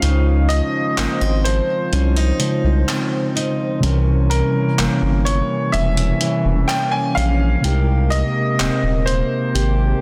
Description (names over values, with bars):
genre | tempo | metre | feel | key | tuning
contemporary R&B | 63 BPM | 4/4 | straight | unclear | A4 = 441 Hz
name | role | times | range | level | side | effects
clear grand piano | melody | 0.0-10.0 s | Bb4 to Ab5 | -26 LUFS | equal | tape echo
mellow tine electric piano | accompaniment | 0.0-10.0 s | C3 to C5 | -24 LUFS | equal | none
mellow French horn section | sustained chords | 0.0-10.0 s | C3 to C5 | -31 LUFS | equal | none
fingerpicked steel-string acoustic guitar | arpeggios | 0.0-10.0 s | C3 to Ab4 | -27 LUFS | equal | tape echo
saturated sub bass | bass | 0.0-9.9 s | Eb1 to Db2 | -20 LUFS | equal | none
dusty soul sampler-style drum kit | drums | 0.0-9.8 s | handclaps, hi-hat | -28 LUFS | equal | none
room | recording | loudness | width
light reverb, small room ambience | dense, heavily limited modern master | -18 LUFS | mono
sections
0.0-10.0 A section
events
break 0.0-10.0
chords
0.0 Dbmaj9; 3.8 C7b9; 7.6 Abmaj9